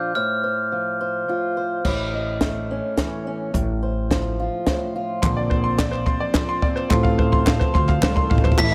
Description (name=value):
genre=indie folk with a building arrangement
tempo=107 BPM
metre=3/4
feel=straight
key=F mixolydian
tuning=A4 = 440 Hz
part: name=glockenspiel with hard plastic mallets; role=melody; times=0.0-1.2, 8.6-8.7 s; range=F6 to B6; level=-29 LUFS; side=equal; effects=none
part: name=fingerpicked acoustic archtop guitar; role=accompaniment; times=0.0-6.9 s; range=A2 to Eb5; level=-29 LUFS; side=equal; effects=none
part: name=upright bass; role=bass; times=1.8-8.7 s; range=A1 to D2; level=-26 LUFS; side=equal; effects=none
part: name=compact cocktail drum kit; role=drums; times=1.8-8.7 s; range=crash cymbal, hi-hat, kick drum, snare drum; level=-24 LUFS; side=equal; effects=none
part: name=felt-muted upright piano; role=accompaniment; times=5.2-8.7 s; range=A1 to F5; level=-33 LUFS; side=equal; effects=none
part: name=picked steel-string acoustic guitar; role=accompaniment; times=5.2-8.7 s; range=A2 to A4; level=-29 LUFS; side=equal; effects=none
part: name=bright upright piano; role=arpeggios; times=5.2-8.7 s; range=C5 to C6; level=-27 LUFS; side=equal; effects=none
part: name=group handclap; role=percussion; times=5.2-8.7 s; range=none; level=-33 LUFS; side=equal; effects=none
part: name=mellow French horn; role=second line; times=8.6-8.7 s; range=E4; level=-26 LUFS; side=equal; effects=none
room=light reverb, small room ambience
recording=none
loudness=-22 LUFS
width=mono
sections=0.0-1.9 A section; 1.9-8.6 B section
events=build-up 1.9-8.6; drum fill 1.9-8.6; felt piano fill 7.7-8.6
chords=0.2 F/A; 1.9 A; 3.5 F/A; 5.2 Bbadd9; 6.9 F/A